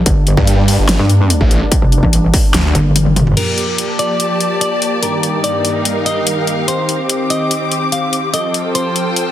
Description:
heavy wobble dubstep; 145 BPM; 4/4; half-time; G minor; A4 = 442 Hz
supersaw chords; sustained chords; 0.0-9.3 s; G2 to A4; -20 LUFS; right 1 dB; sidechain pumping, low-pass filter
metallic wobble bass; bass; 0.0-3.4 s; F1 to G2; -12 LUFS; equal; chorus, overdrive
dubstep drum kit; drums; 0.1-9.2 s; crash cymbal, hi-hat, snare drum, toms; -17 LUFS; left 2 dB
electronic kick drum; drums; 0.1-2.4 s; -14 LUFS; equal; distortion
snarling distorted saw bass; bass; 0.4-2.7 s; G1 to G2; -13 LUFS; equal; distortion, overdrive
semi-hollow electric guitar; melody; 3.4-9.3 s; Bb4 to F5; -20 LUFS; left 1 dB; digital delay
rich symphonic string section; texture; 3.4-9.3 s; G3 to D6; -20 LUFS; left 2 dB; sidechain pumping
light reverb, digital ambience; dense, heavily limited modern master; -12 LUFS; side -12 dB against mid
0.0-3.4 A section; 3.4-9.3 B section
drop 0.0-3.4; drum fill 3.0-3.4; filter sweep on supersaw synth 3.4-9.3
0.0 Gmadd9; 5.0 Eb/G; 6.7 Cm; 8.3 F

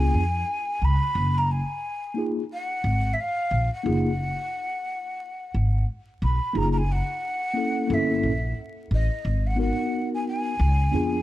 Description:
hip hop; 89 BPM; 4/4; swing 58% on 16ths; F# major; A4 = 439 Hz
breathy mellow jazz flute; melody; 0.0-11.2 s; D#5 to B5; -28 LUFS; equal
mellow tine electric piano; accompaniment; 0.0-11.2 s; A#3 to A#4; -27 LUFS; equal; medium stereo tremolo
upright bass; bass; 0.0-11.2 s; F#1 to E#2; -23 LUFS; equal
small room ambience; vinyl crackle; -23 LUFS; side -15 dB against mid
0.0-6.5 A section; 6.5-11.2 A section
0.0 C#7b9; 1.2 F#maj13; 7.9 Gdim7; 9.2 G#m9; 10.6 C#7b9

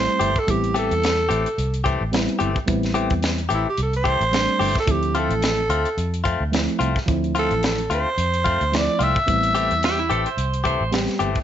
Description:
straight-eighth soul blues; 109 BPM; 4/4; swing 56% on 16ths; A minor; A4 = 440 Hz
growling tenor saxophone; melody; 0.0-10.6 s; E4 to E5; -22 LUFS; right 2 dB
reed electric piano; accompaniment; 0.0-11.3 s; F3 to G4; -25 LUFS; right 2 dB
vintage muted fingered electric bass; bass; 0.0-11.3 s; G1 to F2; -25 LUFS; equal
direct-recorded clean electric guitar; stabs; 0.2-11.4 s; E3 to G4; -25 LUFS; left 6 dB
tight funk drum kit; drums; 0.2-11.4 s; hi-hat, kick drum, snare drum; -26 LUFS; equal
clean lap steel guitar; second line; 9.8-10.9 s; E4 to C5; -25 LUFS; right 6 dB
light reverb; nothing above 7.8 kHz; -18 LUFS; side -10 dB against mid
0.0-11.4 A section
0.0 Am7; 4.9 Dm7; 9.3 Am7

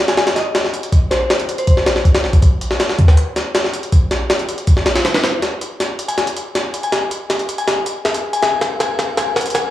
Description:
drum and bass, jungle; 160 BPM; 4/4; straight; A4 = 440 Hz
glassy synth bell; melody; 0.1-2.0, 6.1-9.6 s; C5 to Ab5; -22 LUFS; left 3 dB; chorus, low-pass filter, dub echo
jungle sampler-style drum kit; drums; 0.1-9.6 s; hi-hat, kick drum, snare drum; -14 LUFS; equal
moderate plate reverb, RT60 1.9 s, digital ambience; dry, gritty hardware recording, vinyl crackle, small room reverb; -14 LUFS; side -13 dB against mid
0.0-9.7 A section
build-up 0.0-9.7; drum fill 5.4-9.7

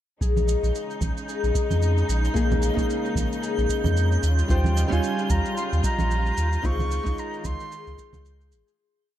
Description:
sunset chillout; 112 BPM; 4/4; swing 57% on 16ths; Bb dorian; A4 = 440 Hz
muted studio string section; sustained chords; 0.2-8.8 s; Db3 to F4; -32 LUFS; right 1 dB
concert harp; arpeggios; 0.2-9.2 s; G4 to F5; -31 LUFS; left 8 dB; digital delay
warm sub bass; bass; 0.2-8.6 s; Ab1 to F2; -23 LUFS; equal
electronic kick drum; drums; 0.2-8.1 s; -27 LUFS; equal
shaker; drums; 0.2-8.8 s; -39 LUFS; right 6 dB
twinkling granular texture; texture; 0.7-8.8 s; G6; -36 LUFS; right 6 dB; built-in reverb
congas; percussion; 0.4-8.2 s; -31 LUFS; right 4 dB
nylon-string guitar; accompaniment; 2.3-8.8 s; G3 to C5; -30 LUFS; moving between left 3 dB and right 4 dB; auto-pan, digital delay
bright reedy silver concert flute; melody; 4.5-8.3 s; G5 to Db6; -31 LUFS; right 1 dB
light reverb, small room ambience; -21 LUFS; side -12 dB against mid
0.2-8.8 groove
fade-out 5.9-8.8
0.2 Bbm7; 4.2 Eb13; 6.6 Dbmaj9

